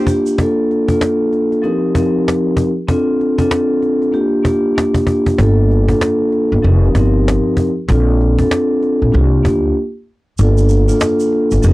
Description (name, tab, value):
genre	hip hop, boom-bap hip-hop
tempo	96 BPM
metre	4/4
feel	swing 61% on 16ths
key	G minor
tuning	A4 = 440 Hz
part	vibraphone with soft mallets	accompaniment	0.0-11.7 s	F3 to Bb4	-14 LUFS	equal	cassette tape, high-pass filter, low-pass filter
part	cajon	drums	0.1-11.7 s	none	-18 LUFS	equal	none
part	tube shaker	percussion	0.1-0.4, 10.4-11.7 s	none	-34 LUFS	right 7 dB	none
part	upright bass	bass	5.4-11.7 s	F1 to D2	-13 LUFS	equal	transformer saturation
room	little or no reverb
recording	blown-out, overdriven recording, overdrive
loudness	-12 LUFS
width	side -19 dB against mid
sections	0.4-10.4 A section; 10.4-11.7 B section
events	break 9.8-10.4; kick muted 10.4-11.7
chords	0.4 Bbmaj7; 1.6 F9sus4; 2.9 F6/C; 4.1 Bb6; 5.4 Gm7; 6.6 F9sus4; 7.9 Bbmaj7; 9.1 C9sus4; 10.4 Gm7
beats	| 0.38 1.01 1.63 2.26 | 2.88 3.51 4.13 4.76 | 5.38 6.01 6.63 7.26 | 7.88 8.51 9.13 9.76 | 10.38 11.01 11.63